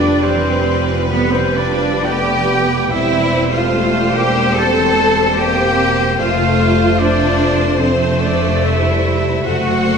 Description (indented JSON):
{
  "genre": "classical, slow romantic movement for symphony orchestra",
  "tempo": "61-76 BPM",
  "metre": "4/4",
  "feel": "rubato",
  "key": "F major",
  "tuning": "A4 = 438 Hz",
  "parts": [
    { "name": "rich symphonic violin section", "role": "melody", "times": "0.0-10.0 s", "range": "B4 to C5", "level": "-22 LUFS", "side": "left 3 dB", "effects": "none" },
    { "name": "bright small flute group", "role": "second line", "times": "0.0-10.0 s", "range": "B4 to A5", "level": "-24 LUFS", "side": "equal", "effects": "none" },
    { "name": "dark clarinet", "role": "second line", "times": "0.0-10.0 s", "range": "B4 to D5", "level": "-28 LUFS", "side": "equal", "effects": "none" },
    { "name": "rich symphonic violin section", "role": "second line", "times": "0.0-10.0 s", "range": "B4 to A5", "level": "-25 LUFS", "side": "left 2 dB", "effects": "none" },
    { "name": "warm oboe", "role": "second line", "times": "0.0-10.0 s", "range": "B4 to A5", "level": "-25 LUFS", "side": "equal", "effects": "none" },
    { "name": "mellow bassoon", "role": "accompaniment", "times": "0.0-10.0 s", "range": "G3 to C4", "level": "-25 LUFS", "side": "right 3 dB", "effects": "none" },
    { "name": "rich studio viola section", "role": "accompaniment", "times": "0.0-10.0 s", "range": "F3 to C4", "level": "-25 LUFS", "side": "right 1 dB", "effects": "none" },
    { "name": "mellow French horn section", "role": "sustained chords", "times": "0.0-10.0 s", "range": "D3 to C4", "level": "-22 LUFS", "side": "left 4 dB", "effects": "none" },
    { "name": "concert harp", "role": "arpeggios", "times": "0.0-10.0 s", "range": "E2 to A5", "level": "-25 LUFS", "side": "left 6 dB", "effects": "none" },
    { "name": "rich studio cello section", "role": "bass", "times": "0.0-10.0 s", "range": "B3 to A4", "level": "-18 LUFS", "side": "right 1 dB", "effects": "none" },
    { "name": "rich symphonic double bass section", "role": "bass", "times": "0.0-10.0 s", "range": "E1 to F#1", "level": "-20 LUFS", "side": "right 3 dB", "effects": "none" }
  ],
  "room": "wet recital hall reverb, RT60 1.6 s",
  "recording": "none",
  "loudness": "-12 LUFS",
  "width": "side -6 dB against mid",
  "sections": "0.0-10.0 A section",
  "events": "none",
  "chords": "0.0 G7/F; 2.9 C7/E; 6.2 F; 9.5 D7/F#"
}